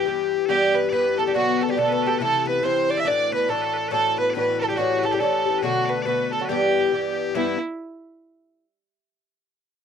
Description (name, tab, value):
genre	celtic folk, Celtic polka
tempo	140 BPM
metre	2/4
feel	swing 61% on 8ths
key	E minor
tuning	A4 = 440 Hz
part	warm fiddle	melody	0.0-7.6 s	E4 to E5	-22 LUFS	right 3 dB	none
part	loud bright bagpipes	second line	0.0-7.6 s	E4 to E5	-32 LUFS	left 3 dB	none
part	Irish bouzouki	accompaniment	0.0-7.6 s	G2 to G4	-24 LUFS	left 13 dB	none
part	Irish bouzouki	second line	0.5-7.6 s	E3 to E4	-29 LUFS	right 6 dB	none
room	light reverb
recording	dry, close 1970s-style studio recording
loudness	-19 LUFS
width	side -7 dB against mid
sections	0.5-7.4 A section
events	none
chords	0.5 Em; 1.3 Bm; 2.2 Am; 3.1 Dadd9; 4.8 A7; 5.6 D6; 6.5 Em